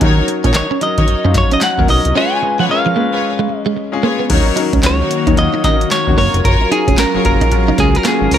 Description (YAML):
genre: R&B, new jack swing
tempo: 112 BPM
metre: 4/4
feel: swing 61% on 16ths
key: Eb minor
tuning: A4 = 441 Hz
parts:
  - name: clear baby grand piano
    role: accompaniment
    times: 0.0-8.4 s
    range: F3 to Cb5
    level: -20 LUFS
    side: left 6 dB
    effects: none
  - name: direct-recorded clean electric guitar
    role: riff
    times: 0.0-8.4 s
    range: F3 to Eb4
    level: -20 LUFS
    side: right 5 dB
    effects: ensemble chorus
  - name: rich studio string section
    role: stabs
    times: 0.0-8.4 s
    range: Eb4 to Db5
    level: -23 LUFS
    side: left 1 dB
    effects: none
  - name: fat analog bass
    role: bass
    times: 0.0-8.4 s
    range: F1 to Eb3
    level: -16 LUFS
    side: equal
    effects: none
  - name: booming analog drum machine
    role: drums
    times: 0.0-8.4 s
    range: crash cymbal, handclaps, hi-hat, kick drum, snare drum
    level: -16 LUFS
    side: equal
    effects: none
  - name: direct-recorded clean electric guitar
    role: melody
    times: 0.6-8.4 s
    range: Ab4 to Ab5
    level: -17 LUFS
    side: equal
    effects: none
  - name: lush unison pad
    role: sustained chords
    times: 4.6-8.4 s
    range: Eb3 to Bb4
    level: -20 LUFS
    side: equal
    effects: chorus, phaser
room: light reverb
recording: none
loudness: -11 LUFS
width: side -10 dB against mid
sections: 0.0-4.3 A section; 4.3-8.4 B section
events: break 2.2-4.3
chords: 0.0 Ebm7; 2.2 Db7; 4.3 Ebm7; 6.2 Gbmaj7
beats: | 0.01 0.55 1.08 1.62 | 2.15 2.69 3.23 3.76 | 4.30 4.83 5.37 5.91 | 6.44 6.98 7.51 8.05